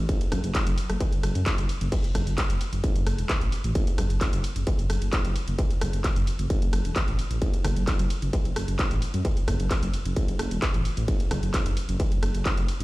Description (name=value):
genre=driving peak-time techno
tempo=131 BPM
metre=4/4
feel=straight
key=F# minor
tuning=A4 = 440 Hz
part: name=dark detuned saw bass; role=bass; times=0.0-12.8 s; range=E1 to F#2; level=-28 LUFS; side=equal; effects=sidechain pumping
part: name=electronic kick drum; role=drums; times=0.1-12.6 s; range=none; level=-26 LUFS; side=equal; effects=distortion
part: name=techno drum kit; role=drums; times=0.1-12.8 s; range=crash cymbal, handclaps, hi-hat, ride cymbal, rim click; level=-32 LUFS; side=equal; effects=sidechain pumping on hats, sidechain pumping on cymbals
room=little or no reverb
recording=played on a big sound system in a bare room, stone room reverb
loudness=-23 LUFS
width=side -19 dB against mid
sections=0.0-12.8 A section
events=none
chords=none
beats=| 0.09 0.55 1.00 1.46 | 1.92 2.38 2.84 3.29 | 3.75 4.21 4.67 5.13 | 5.58 6.04 6.50 6.96 | 7.42 7.88 8.33 8.79 | 9.25 9.71 10.16 10.62 | 11.08 11.54 12.00 12.46